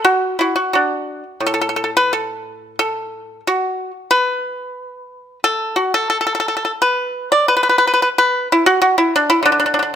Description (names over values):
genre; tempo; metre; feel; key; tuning
chinese traditional, Chinese solo plucked strings; 85-95 BPM; 2/4; rubato; unclear; A4 = 442 Hz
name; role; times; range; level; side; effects
pipa; solo; 0.0-10.0 s; A2 to D5; -14 LUFS; equal; none
room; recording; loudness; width
light reverb; close, detailed microphones; -14 LUFS; side -9 dB against mid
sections
0.0-1.4 A section; 1.4-10.0 B section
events
none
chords
none